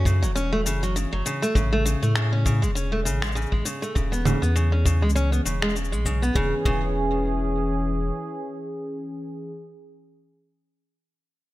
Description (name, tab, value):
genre	folktronica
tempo	100 BPM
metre	4/4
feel	swing 56% on 16ths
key	E major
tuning	A4 = 439 Hz
part	warm analog pad	sustained chords	0.0-9.5 s	C#3 to G#4	-30 LUFS	equal	chorus
part	picked steel-string acoustic guitar	arpeggios	0.0-6.8 s	C#3 to C#4	-26 LUFS	equal	low-pass filter, tape echo
part	warm sub bass	bass	0.0-8.1 s	E1 to A2	-24 LUFS	equal	none
part	electronic cabasa, finger snaps and congas	drums	0.1-6.3 s	none	-28 LUFS	equal	none
part	kick drum	drums	0.1-6.8 s	none	-26 LUFS	equal	none
room	small room reverb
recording	none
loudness	-21 LUFS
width	side -16 dB against mid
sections	0.0-6.4 A section; 6.4-8.8 B section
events	none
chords	0.0 F#m7; 1.6 Amaj7; 4.0 E6